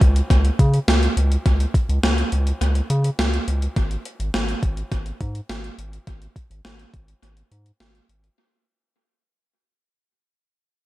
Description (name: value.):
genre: synth-pop.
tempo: 104 BPM.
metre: 4/4.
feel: straight.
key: unclear.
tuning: A4 = 440 Hz.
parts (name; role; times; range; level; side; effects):
round analog bass; bass; 0.0-8.3 s; G#1 to C#3; -20 LUFS; equal; none.
gated 80s digital drum machine; drums; 0.0-8.4 s; hi-hat, kick drum, snare drum; -21 LUFS; equal; gated reverb, gated reverb snare, overdrive, tape echo.
room: little or no reverb.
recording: echo-heavy mix.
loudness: -18 LUFS.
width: side -17 dB against mid.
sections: 0.0-8.4 A section.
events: fade-out 0.0-8.4.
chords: none.